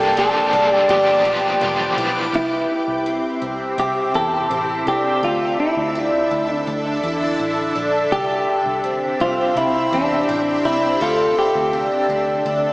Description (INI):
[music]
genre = dream pop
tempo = 83 BPM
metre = 4/4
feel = straight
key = C major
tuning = A4 = 440 Hz
[part]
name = semi-hollow electric guitar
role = melody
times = 0.0-12.7 s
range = D4 to A4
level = -19 LUFS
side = equal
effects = analog delay
[part]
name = cranked stack guitar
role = accompaniment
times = 0.0-2.4 s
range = G2 to A4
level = -23 LUFS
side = equal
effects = overdrive, tremolo, wide subtle chorus
[part]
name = shimmering ambient pad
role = sustained chords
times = 0.0-12.7 s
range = C3 to D6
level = -24 LUFS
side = equal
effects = chorus, built-in reverb, phaser
[part]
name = picked twelve-string acoustic guitar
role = arpeggios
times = 0.0-12.7 s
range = C4 to A4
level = -22 LUFS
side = equal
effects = lush chorus, analog delay
[part]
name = vintage muted picked electric bass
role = bass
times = 0.0-12.7 s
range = E1 to E2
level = -32 LUFS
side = equal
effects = none
[sound]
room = wet lush hall reverb, RT60 2.7 s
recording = dreamy mix soaked in reverb, small speaker sound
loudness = -16 LUFS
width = side -23 dB against mid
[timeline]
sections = 0.0-2.3 A section; 2.3-12.7 B section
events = none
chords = 0.0 Bbmaj7/C; 0.9 G7; 2.3 C; 5.2 Dsus2; 8.1 C; 11.0 Dsus2